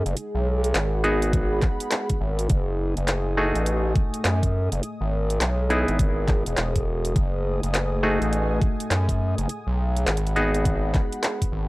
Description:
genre	glitch hop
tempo	103 BPM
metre	4/4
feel	swing 62% on 16ths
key	F# dorian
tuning	A4 = 440 Hz
part	dark analog pad	sustained chords	0.0-11.7 s	A3 to D#6	-31 LUFS	equal	chorus, sidechain pumping
part	overdriven clav	stabs	0.0-11.7 s	A3 to G#4	-28 LUFS	equal	sidechain pumping, low-pass filter, analog delay
part	gritty driven synth bass	bass	0.0-11.7 s	E1 to F#2	-24 LUFS	equal	distortion, tube saturation
part	drum and bass drum kit	drums	0.1-11.5 s	handclaps, hi-hat	-27 LUFS	equal	overdrive
part	electronic kick drum	drums	1.3-11.5 s	none	-23 LUFS	equal	overdrive
room	little or no reverb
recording	dry, gritty hardware recording, cassette tape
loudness	-21 LUFS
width	side -20 dB against mid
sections	0.0-11.7 A section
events	none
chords	0.2 G#m7; 2.5 F#m69; 4.8 Emaj7; 7.2 F#m69; 9.5 G#m7

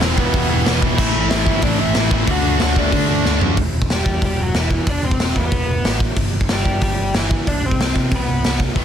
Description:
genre	punk rock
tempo	185 BPM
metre	4/4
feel	straight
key	E minor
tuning	A4 = 435 Hz
part	crunchy overdriven guitar	melody	0.0-8.6 s	E3 to F#5	-23 LUFS	equal	none
part	distorted electric guitar	riff	0.0-3.6, 8.8 s	A2 to F#4	-24 LUFS	right 16 dB	overdrive
part	heavy high-gain guitar	riff	0.0-3.6 s	E2 to D4	-24 LUFS	right 1 dB	distortion
part	sludgy distorted guitar	riff	0.0-3.6, 8.8 s	E2 to D4	-22 LUFS	left 14 dB	overdrive
part	overdriven picked electric bass	bass	0.0-8.8 s	E1 to C3	-22 LUFS	equal	none
part	raw garage drum kit	drums	0.0-8.8 s	crash cymbal, hi-hat, kick drum, snare drum, toms	-19 LUFS	equal	none
room	little or no reverb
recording	dense, heavily limited modern master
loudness	-15 LUFS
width	side -9 dB against mid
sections	0.0-3.6 A section; 3.6-8.8 B section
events	drum fill 3.3-3.6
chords	0.0 Em; 1.0 Am; 2.3 D; 3.6 Em; 6.2 Em/G; 7.5 Csus2

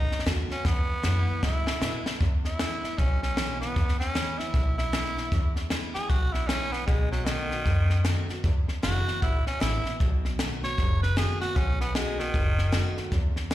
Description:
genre	rockabilly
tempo	154 BPM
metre	4/4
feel	swing 63% on 8ths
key	E major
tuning	A4 = 435 Hz
part	growling tenor saxophone	melody	0.0-13.0 s	D#3 to C#5	-31 LUFS	right 1 dB	slapback echo
part	picked steel-string acoustic guitar	accompaniment	0.0-13.5 s	E2 to F#4	-35 LUFS	left 2 dB	slapback echo
part	upright bass	bass	0.0-13.5 s	F#1 to B2	-27 LUFS	equal	none
part	compact cocktail drum kit	drums	0.1-13.5 s	hi-hat, kick drum, snare drum	-28 LUFS	equal	none
room	little or no reverb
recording	live gig heard through the venue's PA, recital hall reverb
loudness	-24 LUFS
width	side -14 dB against mid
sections	0.0-2.2 A section; 2.2-13.5 B section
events	drum fill 0.7-2.2; tenor saxophone solo 2.2-13.5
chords	0.0 B7; 0.7 E; 6.9 B7; 8.4 E; 10.0 B7

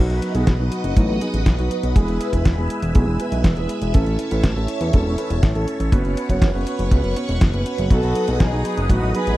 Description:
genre	italo disco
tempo	121 BPM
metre	4/4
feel	straight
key	B mixolydian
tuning	A4 = 440 Hz
part	phased string machine	sustained chords	0.0-9.4 s	B4 to E6	-28 LUFS	equal	ensemble chorus, phaser
part	dark concert grand piano	stabs	0.0-9.3 s	F#3 to C#5	-25 LUFS	right 1 dB	none
part	fat analog bass	bass	0.0-9.4 s	E1 to E2	-22 LUFS	equal	none
part	detuned 8-bit digital drum machine	drums	0.1-9.4 s	hi-hat, snare drum	-25 LUFS	equal	none
part	kick drum	drums	0.5-9.0 s	none	-15 LUFS	equal	none
part	dark studio violin section	melody	7.9-9.4 s	D#4 to B4	-24 LUFS	right 1 dB	tape echo
room	little or no reverb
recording	dry, close 1970s-style studio recording, vinyl crackle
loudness	-17 LUFS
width	side -16 dB against mid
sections	0.0-9.4 A section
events	none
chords	0.0 B; 2.0 E; 3.9 A; 5.9 F#sus4; 7.9 B

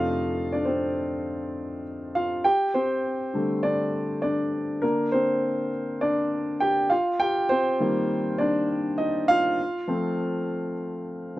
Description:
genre	pop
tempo	101 BPM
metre	4/4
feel	swing 56% on 16ths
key	unclear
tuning	A4 = 441 Hz
part	warm concert grand piano	solo	0.0-11.4 s	F2 to G5	-23 LUFS	equal	none
room	light reverb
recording	recorded outdoors, with no room sound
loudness	-23 LUFS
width	side -16 dB against mid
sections	0.0-2.4 A section; 2.4-11.4 B section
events	grand piano solo 0.0-2.4, 2.4-11.4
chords	0.0 F; 2.4 Dsus4; 4.8 Gm/D; 6.9 Eb; 9.6 F

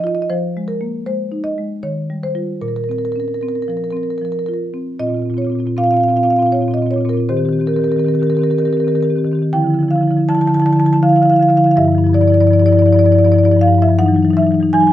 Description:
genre	classical, contemporary piece for solo marimba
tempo	80 BPM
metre	3/4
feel	straight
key	unclear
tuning	A4 = 440 Hz
part	marimba with medium mallets	solo	0.0-14.9 s	G2 to A5	-13 LUFS	equal	none
room	light reverb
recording	none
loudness	-13 LUFS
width	side -12 dB against mid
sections	0.0-5.0 A section; 5.0-14.9 A section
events	none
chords	0.3 Fm7; 1.8 Eb9; 2.6 Bbsus2; 7.3 Eb6; 9.5 Dmadd9; 11.8 G5; 14.0 Emaj9

